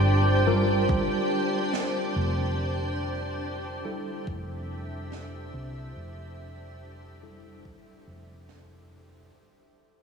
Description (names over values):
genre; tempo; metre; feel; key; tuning
ambient dub; 71 BPM; 4/4; swing 54% on 16ths; unclear; A4 = 438 Hz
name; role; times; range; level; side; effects
soft additive organ-like pad; sustained chords; 0.0-9.3 s; D4 to E5; -29 LUFS; right 1 dB; ensemble chorus, built-in reverb
bell-like tine electric piano; stabs; 0.0-9.3 s; G3 to Bb4; -31 LUFS; left 1 dB; fast stereo tremolo, low-pass filter, dub echo
hollow-body short-scale fingered electric bass; bass; 0.0-9.3 s; F1 to C2; -29 LUFS; equal; none
electronic kick drum; drums; 0.9-7.8 s; none; -29 LUFS; equal; none
snare drum; drums; 1.7-8.7 s; none; -36 LUFS; right 6 dB; none
room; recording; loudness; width
light reverb; small room ambience; -25 LUFS; side -6 dB against mid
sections
0.0-9.3 A section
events
fade-out 0.0-9.3; filter sweep on tine electric piano 0.0-9.3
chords
0.0 Gm7; 2.6 Fmaj9